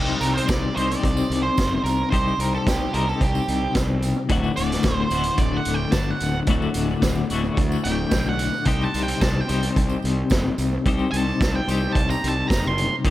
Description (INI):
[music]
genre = psychedelic rock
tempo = 110 BPM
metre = 4/4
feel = straight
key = unclear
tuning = A4 = 441 Hz
[part]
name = twelve-string electric guitar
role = riff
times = 0.0-13.1 s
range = D2 to C5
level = -24 LUFS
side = left 4 dB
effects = tremolo, analog delay
[part]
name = fuzz fingered electric bass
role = bass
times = 0.0-13.1 s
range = D1 to D2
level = -26 LUFS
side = right 1 dB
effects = overdrive
[part]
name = tambourine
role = percussion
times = 0.1-13.1 s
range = none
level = -42 LUFS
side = right 10 dB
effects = none
[part]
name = octave-fuzz lead guitar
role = melody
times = 0.2-12.9 s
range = G4 to C6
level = -27 LUFS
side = right 3 dB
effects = distortion, analog delay
[part]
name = vintage drum kit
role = drums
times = 0.2-13.1 s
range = hi-hat, kick drum, snare drum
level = -24 LUFS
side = right 1 dB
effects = analog delay
[sound]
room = light reverb, small room ambience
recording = echo-heavy mix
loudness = -19 LUFS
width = side -14 dB against mid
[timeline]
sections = 0.0-13.1 A section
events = lead electric guitar solo 0.0-13.1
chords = 0.0 Cm; 4.3 D; 8.7 Cm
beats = 0.48 1.03 1.57 | 2.12 2.66 3.21 3.75 | 4.30 4.84 5.39 5.93 | 6.48 7.03 7.57 8.12 | 8.67 9.21 9.76 10.31 | 10.85 11.40 11.95 12.49 | 13.04